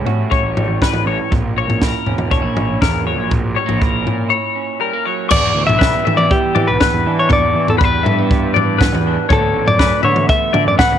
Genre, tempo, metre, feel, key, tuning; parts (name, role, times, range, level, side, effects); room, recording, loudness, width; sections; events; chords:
math rock and midwest emo; 120 BPM; 4/4; straight; A4 = 437 Hz
electric guitar through a small old amp; accompaniment; 0.0-11.0 s; D2 to F#4; -23 LUFS; right 14 dB
fuzz picked electric bass; bass; 0.0-11.0 s; E1 to E3; -21 LUFS; equal; overdrive
compact cocktail drum kit; drums; 0.1-10.9 s; crash cymbal, kick drum, snare drum, toms; -17 LUFS; equal
twelve-string electric guitar; arpeggios; 0.3-11.0 s; A#4 to C#6; -20 LUFS; left 13 dB; lush chorus
clean electric guitar; melody; 5.3-11.0 s; G4 to F#5; -16 LUFS; left 2 dB; slapback echo
small room ambience; 1960s-style stereo with parts hard left and right; -13 LUFS; side -9 dB against mid
0.0-5.3 A section; 5.3-11.0 B section
0.0 A7; 1.3 F#7; 5.3 Em7; 9.3 Bm9